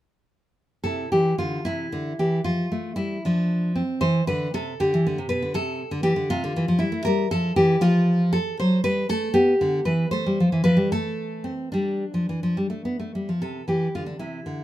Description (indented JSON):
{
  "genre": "classical, baroque-style dance for nylon-string guitar",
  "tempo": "69-81 BPM (dotted quarters)",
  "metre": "6/8",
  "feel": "rubato",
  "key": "C major",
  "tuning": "A4 = 441 Hz",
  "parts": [
    { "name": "nylon-string guitar", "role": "solo", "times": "0.8-14.6 s", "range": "B2 to C5", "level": "-21 LUFS", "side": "equal", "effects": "none" }
  ],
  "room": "light reverb",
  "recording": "minimal, uncompressed stereo recording",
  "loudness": "-21 LUFS",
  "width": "side -14 dB against mid",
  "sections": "0.9-13.4 A section; 13.4-14.6 A section",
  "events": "none",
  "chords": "0.9 C; 2.5 F; 4.0 C; 4.8 G/D; 5.6 C; 7.1 Gm13; 7.8 N.C.; 8.6 Am13/F#; 9.4 G; 10.1 Am; 11.7 G5; 13.4 C",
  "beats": "| 0.86 1.67 | 2.46 3.25 | 4.03 4.81 | 5.55 6.30 | 7.07 7.83 | 8.60 9.36 | 10.12 10.91 | 11.73 12.57 | 13.42 14.20"
}